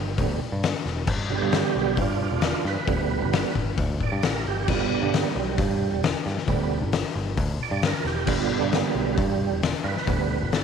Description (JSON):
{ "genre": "blues rock power trio and southern rock", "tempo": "133 BPM", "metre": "4/4", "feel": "straight", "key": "G mixolydian", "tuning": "A4 = 440 Hz", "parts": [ { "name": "picked electric bass", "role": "bass", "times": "0.0-10.6 s", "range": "E1 to G2", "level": "-28 LUFS", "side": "equal", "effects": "none" }, { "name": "overdriven tonewheel organ", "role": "sustained chords", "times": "0.2-10.6 s", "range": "D3 to D5", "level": "-27 LUFS", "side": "right 10 dB", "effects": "chorus vibrato, fast rotary speaker" }, { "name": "oversized low-tuned drum kit", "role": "drums", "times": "0.2-10.6 s", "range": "crash cymbal, hi-hat, kick drum, snare drum", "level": "-26 LUFS", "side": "left 4 dB", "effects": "none" } ], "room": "moderate echo chamber reverb, RT60 1.8 s, small room ambience", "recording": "1960s-style stereo", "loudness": "-22 LUFS", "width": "side -7 dB against mid", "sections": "0.0-10.6 A section", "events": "tonewheel organ solo 0.0-10.6", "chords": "0.0 G", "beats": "0.18 0.63 | 1.08 1.53 1.99 2.44 | 2.89 3.34 3.79 4.24 | 4.69 5.14 5.59 6.04 | 6.49 6.93 7.38 7.83 | 8.28 8.73 9.18 9.63 | 10.08 10.53" }